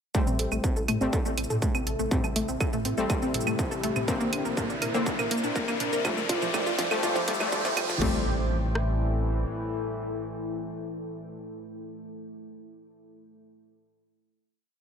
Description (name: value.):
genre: melodic techno.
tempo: 122 BPM.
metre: 4/4.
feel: straight.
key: A phrygian.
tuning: A4 = 440 Hz.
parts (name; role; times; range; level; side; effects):
deep dark ambient pad; sustained chords; 1.4-11.4 s; A3 to G5; -35 LUFS; equal; chorus, built-in reverb, sidechain pumping.
wide unison pluck; arpeggios; 0.1-8.2 s; F3 to Bb4; -30 LUFS; equal; sidechain pumping, dub echo.
synth brass stab; stabs; 0.1-11.4 s; D3 to C4; -33 LUFS; left 3 dB; chorus, sidechain pumping, dub echo.
analog drone; drone; 0.5-11.4 s; A2 to E4; -39 LUFS; equal; chorus, sidechain pumping.
techno drum kit; drums; 0.1-8.9 s; kick drum, rim click; -30 LUFS; equal; distortion, overdrive.
techno drum kit; drums; 0.1-8.1 s; claves, crash cymbal, hi-hat, shaker, toms; -33 LUFS; right 2 dB; overdrive.
riser and impact; sound effects; 2.3-11.4 s; none; -36 LUFS; left 1 dB; none.
round analog bass; bass; 0.3-9.5 s; F1 to Bb2; -32 LUFS; equal; sidechain pumping.
room: moderate lush hall reverb, RT60 2.2 s.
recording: high-pass filter.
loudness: -25 LUFS.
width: side -7 dB against mid.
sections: 0.1-8.0 build; 8.0-11.9 final chord.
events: build-up 0.1-8.0; filter sweep on synth pluck 0.1-8.0; filter sweep 0.1-8.0; riser 2.3-8.0; drum fill 4.1-8.0.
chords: 0.1 Am7; 4.1 Bbadd9; 6.0 Fadd9; 8.0 Am7.